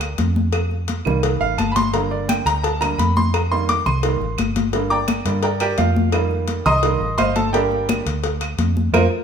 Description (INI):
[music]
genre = latin, salsa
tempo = 171 BPM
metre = 4/4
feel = straight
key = G minor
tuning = A4 = 440 Hz
[part]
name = vintage muted fingered electric bass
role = bass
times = 0.0-9.1 s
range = G1 to G2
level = -22 LUFS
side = right 1 dB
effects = none
[part]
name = claves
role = percussion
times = 0.0-9.0 s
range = none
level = -31 LUFS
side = right 7 dB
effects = none
[part]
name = congas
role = percussion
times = 0.0-9.0 s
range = none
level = -24 LUFS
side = left 5 dB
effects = none
[part]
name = cowbell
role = percussion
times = 0.0-9.0 s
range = none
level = -26 LUFS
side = left 5 dB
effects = none
[part]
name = bright baby grand piano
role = accompaniment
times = 1.1-9.0 s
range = D3 to Eb6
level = -20 LUFS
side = right 2 dB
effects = none
[sound]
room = wet large studio reverb, RT60 1.2 s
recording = minimal, uncompressed stereo recording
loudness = -17 LUFS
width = side -7 dB against mid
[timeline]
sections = 0.0-9.2 A section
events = grand piano solo 0.0-9.2; band accent 8.9-9.2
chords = 0.0 N.C.; 0.5 F7sus4; 1.9 Gm; 3.3 F7sus4; 4.7 Gm; 6.1 F7sus4; 7.5 Gm